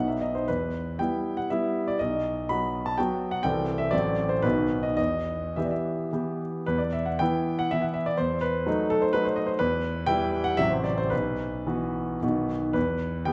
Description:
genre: classical, romantic triple-time dance for piano with dotted rhythms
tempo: 101-132 BPM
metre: 3/4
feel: rubato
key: E minor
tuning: A4 = 439 Hz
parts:
  - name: clear grand piano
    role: solo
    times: 0.0-13.3 s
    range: A1 to B5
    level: -27 LUFS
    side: equal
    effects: none
room: moderate concert hall reverb, RT60 2.3 s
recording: none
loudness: -27 LUFS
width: mono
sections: 0.0-6.7 A section; 6.7-13.3 A section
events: none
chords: 0.5 Em; 2.0 B; 3.4 C6; 3.9 F#dim/A; 4.4 B; 5.0 Em; 6.7 E5; 8.2 B7/E; 9.6 Em; 10.6 F#dim/A; 11.1 Bsus4; 12.2 B; 12.8 Em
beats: | 0.48 0.99 1.50 | 2.00 2.50 2.98 | 3.44 3.93 4.44 | 4.99 5.57 6.14 | 6.69 7.21 7.72 | 8.19 8.67 9.15 | 9.61 10.08 10.59 | 11.12 11.68 12.23 | 12.76 13.28

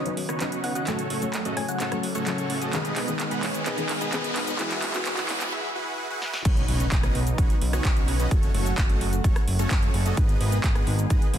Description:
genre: EDM, festival progressive house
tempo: 129 BPM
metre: 4/4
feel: straight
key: unclear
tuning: A4 = 436 Hz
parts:
  - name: lush unison pad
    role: sustained chords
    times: 0.0-11.4 s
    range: C#3 to G#4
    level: -33 LUFS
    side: right 1 dB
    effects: chorus, sidechain pumping
  - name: dense compressed supersaw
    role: riff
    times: 0.0-11.3 s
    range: A3 to F#5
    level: -30 LUFS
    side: right 1 dB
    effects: sidechain pumping, low-pass filter, tape echo
  - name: fat analog bass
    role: bass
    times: 0.0-11.4 s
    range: F#1 to B1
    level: -29 LUFS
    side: equal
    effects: sidechain pumping, high-pass filter
  - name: riser and impact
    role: sound effects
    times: 1.2-8.3 s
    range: none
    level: -35 LUFS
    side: equal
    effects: none
  - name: dark baby grand piano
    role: accompaniment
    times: 0.1-5.5 s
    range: D#3 to C#5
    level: -33 LUFS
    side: left 4 dB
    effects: sidechain pumping, tape echo
  - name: big-room dance drum kit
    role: drums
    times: 0.1-11.4 s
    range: crash cymbal, handclaps, hi-hat, rim click, shaker, snare drum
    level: -31 LUFS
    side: right 1 dB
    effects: none
  - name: thumb-piano-like synth pluck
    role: melody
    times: 0.6-2.3 s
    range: F#5 to G#5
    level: -35 LUFS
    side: left 2 dB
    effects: chorus, tape echo
  - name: electronic kick drum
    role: drums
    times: 6.5-11.2 s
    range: none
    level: -22 LUFS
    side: equal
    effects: none
room: light reverb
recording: dense, heavily limited modern master, high-pass filter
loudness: -22 LUFS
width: side -10 dB against mid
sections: 0.0-6.5 A section; 6.5-11.4 B section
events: build-up 0.0-6.5; drum fill 0.0-5.5, 6.2; filter sweep on supersaw synth 0.0-6.5; filter sweep 0.0-6.5; riser 1.2-5.5; break 5.5-6.5; drop 6.5-11.4; impact 6.5-8.3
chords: 0.0 Badd9; 0.9 F#m; 2.7 G#m; 4.6 Eadd9/G#; 6.5 Badd9; 8.3 F#m; 10.2 G#m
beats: 0.41 | 0.87 1.34 1.80 2.27 | 2.73 3.20 3.66 4.13 | 4.59 5.06 5.52 5.99 | 6.45 6.92 7.38 7.85 | 8.31 8.78 9.24 9.71 | 10.17 10.64 11.10

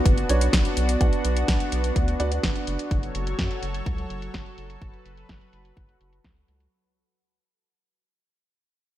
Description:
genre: italo disco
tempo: 126 BPM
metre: 4/4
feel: straight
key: F# minor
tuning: A4 = 440 Hz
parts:
  - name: lush unison pad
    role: sustained chords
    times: 0.0-6.7 s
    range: F#3 to C#5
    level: -30 LUFS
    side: equal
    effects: chorus
  - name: warm concert grand piano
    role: stabs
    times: 0.0-2.9 s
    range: D4 to F#5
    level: -31 LUFS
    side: right 4 dB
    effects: ping-pong delay
  - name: round analog bass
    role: bass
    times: 0.1-6.7 s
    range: F#1 to F#2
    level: -26 LUFS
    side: equal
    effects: none
  - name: electronic kick drum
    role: drums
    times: 0.1-6.3 s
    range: none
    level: -24 LUFS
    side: equal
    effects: small room reverb
  - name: house drum kit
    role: drums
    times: 0.1-6.7 s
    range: hi-hat, snare drum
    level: -29 LUFS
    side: equal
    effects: low-pass filter on hats, small room reverb, low-pass filter on snare
room: digital ambience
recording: none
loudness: -22 LUFS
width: side -13 dB against mid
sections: 0.0-6.7 A section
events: fade-out 0.0-6.7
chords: 0.0 Bm; 2.9 F#m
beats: 0.05 0.53 | 1.00 1.48 1.96 2.43 | 2.91 3.39 3.86 4.34 | 4.82 5.29 5.77 6.24

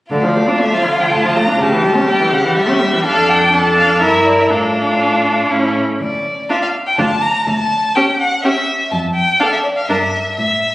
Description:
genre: quick classical-period movement for string quartet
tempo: 123 BPM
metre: 3/4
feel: straight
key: D minor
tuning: A4 = 437 Hz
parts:
  - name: warm violin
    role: melody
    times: 0.1-10.7 s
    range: A4 to Bb5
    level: -17 LUFS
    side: left 1 dB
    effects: none
  - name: rich violin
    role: second line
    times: 0.1-10.0 s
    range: E4 to Bb4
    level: -17 LUFS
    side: equal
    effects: none
  - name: rich viola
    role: accompaniment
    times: 0.1-10.0 s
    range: C#3 to E4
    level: -16 LUFS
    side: right 1 dB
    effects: none
  - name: rich cello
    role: bass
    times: 0.1-10.7 s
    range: D2 to A2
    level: -22 LUFS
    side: equal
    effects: none
room: wet scoring stage reverb, RT60 1.9 s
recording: recorded on a phone in the room, studio reverb, compression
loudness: -12 LUFS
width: side -17 dB against mid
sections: 0.1-10.7 A section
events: none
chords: 0.1 Dm; 1.6 C#dim/D; 3.1 Dm/F; 4.0 Edim/G; 4.5 Dm/A; 5.5 A; 6.0 N.C.; 7.5 C#dim/D; 8.9 N.C.; 9.9 G5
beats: | 0.12 0.61 1.11 | 1.60 2.08 2.57 | 3.05 3.53 4.01 | 4.51 5.00 5.51 | 6.00 6.50 6.98 | 7.47 7.96 8.44 | 8.92 9.40 9.89 | 10.39

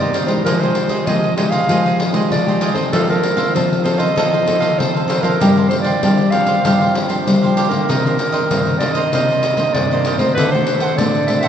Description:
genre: samba and choro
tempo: 97 BPM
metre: 4/4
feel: straight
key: unclear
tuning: A4 = 441 Hz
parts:
  - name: mellow clarinet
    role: melody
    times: 0.0-11.5 s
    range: A4 to F5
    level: -19 LUFS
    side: right 1 dB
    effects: none
  - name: cavaquinho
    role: accompaniment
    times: 0.0-11.5 s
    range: D4 to F#5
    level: -23 LUFS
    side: right 4 dB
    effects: none
  - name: nylon-string guitar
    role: accompaniment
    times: 0.0-11.5 s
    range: G2 to A4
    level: -21 LUFS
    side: left 1 dB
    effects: none
  - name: nylon-string guitar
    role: bass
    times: 0.0-11.5 s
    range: C3 to G3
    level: -20 LUFS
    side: left 1 dB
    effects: none
  - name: pandeiro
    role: percussion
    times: 0.0-11.5 s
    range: none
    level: -21 LUFS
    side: left 2 dB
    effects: none
room: wet cathedral reverb, RT60 4.6 s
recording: recorded in a church or concert hall, nothing above 7.9 kHz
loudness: -14 LUFS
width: side -8 dB against mid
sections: 0.0-11.5 A section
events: none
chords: 0.5 Fm9; 2.9 F7; 5.4 G7sus4; 7.9 Cm9; 10.4 D7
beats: | 0.46 1.08 1.70 2.31 | 2.93 3.55 4.17 4.79 | 5.41 6.03 6.65 7.27 | 7.89 8.51 9.13 9.75 | 10.37 10.99

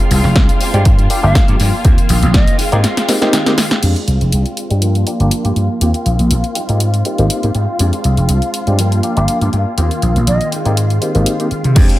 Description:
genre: filtered disco house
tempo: 121 BPM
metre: 4/4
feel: swing 54% on 16ths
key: unclear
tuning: A4 = 440 Hz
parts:
  - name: muted studio string section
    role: sustained chords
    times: 0.0-12.0 s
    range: F4 to F5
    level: -24 LUFS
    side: left 2 dB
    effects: sidechain pumping, low-pass filter
  - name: electric guitar at the edge of break-up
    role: riff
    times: 0.0-12.0 s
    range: Eb3 to G4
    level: -22 LUFS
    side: right 1 dB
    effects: ensemble chorus, sidechain pumping, low-pass filter
  - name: vintage slap bass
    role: bass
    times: 0.1-11.9 s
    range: F1 to C3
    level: -13 LUFS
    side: equal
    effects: sidechain pumping, low-pass filter
  - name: house drum kit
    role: drums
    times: 0.1-12.0 s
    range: crash cymbal, hi-hat, snare drum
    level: -19 LUFS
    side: left 1 dB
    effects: sidechain pumping on hats, studio reverb, sidechain pumping on cymbals
  - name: tambourine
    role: percussion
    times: 0.1-3.8, 7.8-12.0 s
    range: none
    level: -37 LUFS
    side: left 4 dB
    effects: none
  - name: electronic kick drum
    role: drums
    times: 0.4-2.5, 11.8-11.9 s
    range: none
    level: -11 LUFS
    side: equal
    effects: studio reverb
  - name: barky reed electric piano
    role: accompaniment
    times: 0.7-12.0 s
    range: Ab3 to G4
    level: -20 LUFS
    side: equal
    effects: overdrive, fast tremolo, phaser, sidechain pumping, low-pass filter
  - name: bright silver concert flute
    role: melody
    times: 1.2-2.6, 9.2-10.5 s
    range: Eb5 to F5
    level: -24 LUFS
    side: right 1 dB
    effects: vintage 12-bit sampler grit, sidechain pumping, low-pass filter, tape echo
room: light reverb, digital ambience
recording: none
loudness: -11 LUFS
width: side -16 dB against mid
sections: 0.0-3.8 A section; 3.8-11.8 B section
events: break 2.8-3.8; drum fill 2.8-3.8; filter sweep 3.8-11.8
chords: 0.0 Fm69; 0.9 Gm7; 1.8 Eb6; 2.6 Abmaj7; 3.8 Fm69; 4.8 Gm7; 5.8 Eb6; 6.6 Abmaj7; 7.8 Fm69; 8.8 Gm7; 9.8 Eb6; 10.5 Abmaj7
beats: 0.36 0.86 1.35 | 1.85 2.34 2.84 3.33 | 3.83 4.33 4.82 5.32 | 5.82 6.31 6.81 7.30 | 7.80 8.29 8.79 9.29 | 9.78 10.28 10.77 11.27 | 11.77

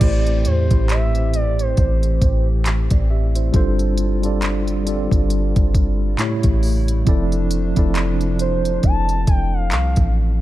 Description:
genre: contemporary R&B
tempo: 68 BPM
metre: 4/4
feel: swing 58% on 16ths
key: unclear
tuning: A4 = 440 Hz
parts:
  - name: gliding portamento lead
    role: melody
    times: 0.0-2.5, 8.4-10.2 s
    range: C5 to A5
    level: -25 LUFS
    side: right 1 dB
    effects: chorus, phaser
  - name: mellow tine electric piano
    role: accompaniment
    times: 0.0-10.4 s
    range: A2 to E5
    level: -23 LUFS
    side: right 1 dB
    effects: medium stereo tremolo
  - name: hollow soft pad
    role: sustained chords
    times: 0.0-10.4 s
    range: C3 to G4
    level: -30 LUFS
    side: equal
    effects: chorus
  - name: soft 808-style bass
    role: bass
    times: 0.0-10.4 s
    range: F1 to E2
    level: -19 LUFS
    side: equal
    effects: none
  - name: smooth R&B drum kit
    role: drums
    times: 0.0-10.1 s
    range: crash cymbal, handclaps, hi-hat, kick drum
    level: -19 LUFS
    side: equal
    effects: none
room: digital ambience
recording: dark, warm production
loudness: -16 LUFS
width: side -15 dB against mid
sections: 0.0-10.4 A section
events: none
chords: 0.0 Am7; 3.5 G7sus4; 6.2 A7; 7.1 Dm7/F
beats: | 0.01 0.89 1.78 2.66 | 3.54 4.42 5.31 6.19 | 7.07 7.95 8.84 9.72

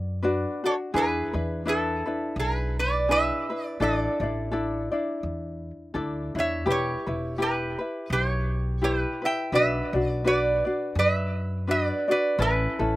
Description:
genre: Hawaiian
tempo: 84 BPM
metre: 4/4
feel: swing 57% on 8ths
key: unclear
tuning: A4 = 440 Hz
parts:
  - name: lap resonator guitar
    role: melody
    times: 0.0-13.0 s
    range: E4 to G5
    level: -26 LUFS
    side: right 2 dB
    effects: none
  - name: ukulele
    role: accompaniment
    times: 0.0-13.0 s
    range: C#4 to D5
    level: -28 LUFS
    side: left 2 dB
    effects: none
  - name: upright bass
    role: bass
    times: 0.0-13.0 s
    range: E1 to F#2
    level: -30 LUFS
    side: equal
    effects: none
room: little or no reverb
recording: recorded outdoors, with no room sound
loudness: -24 LUFS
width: side -17 dB against mid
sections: 0.0-13.0 A section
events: none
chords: 0.0 Bm; 0.9 E7; 3.8 Asus4; 6.7 Em; 9.5 Bm; 12.4 Aadd9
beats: 0.22 | 0.94 1.65 2.37 3.09 | 3.80 4.52 5.23 5.95 | 6.67 7.38 8.10 8.81 | 9.53 10.25 10.96 11.68 | 12.40

